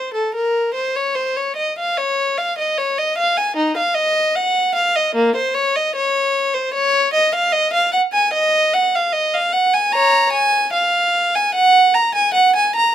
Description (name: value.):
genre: classical, baroque-style suite movement for unaccompanied violin.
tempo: 75 BPM.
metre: 4/4.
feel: rubato.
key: unclear.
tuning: A4 = 438 Hz.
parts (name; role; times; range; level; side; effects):
rich violin; solo; 0.0-12.9 s; Bb3 to Bb5; -15 LUFS; equal; none.
room: light reverb.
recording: close, detailed microphones.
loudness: -15 LUFS.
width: side -10 dB against mid.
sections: 0.0-12.9 A section.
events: none.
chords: none.